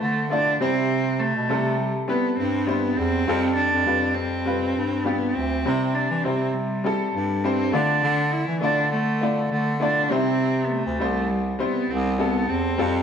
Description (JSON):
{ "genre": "pop", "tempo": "101 BPM", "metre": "4/4", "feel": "straight", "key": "C major", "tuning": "A4 = 441 Hz", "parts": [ { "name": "dark cello", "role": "melody", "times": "0.0-13.0 s", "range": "G3 to E4", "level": "-24 LUFS", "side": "right 2 dB", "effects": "none" }, { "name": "bright upright piano", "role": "accompaniment", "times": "0.0-13.0 s", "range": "C3 to E5", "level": "-26 LUFS", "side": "left 3 dB", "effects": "none" }, { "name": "bright bass clarinet", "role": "bass", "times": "0.0-13.0 s", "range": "C2 to E3", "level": "-26 LUFS", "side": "equal", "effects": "none" } ], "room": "moderate stone room reverb, RT60 1.1 s", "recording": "band playing live in one room", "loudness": "-20 LUFS", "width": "side -7 dB against mid", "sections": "0.0-13.0 A section", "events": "none", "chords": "0.0 Dmadd9; 0.6 C; 3.3 Fadd9; 5.7 C; 7.7 Dmadd9; 10.1 C", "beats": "0.31 | 0.91 1.50 2.09 2.69 | 3.28 3.88 4.47 5.06 | 5.66 6.25 6.85 7.44 | 8.04 8.63 9.22 9.82 | 10.41 11.01 11.60 12.20 | 12.79" }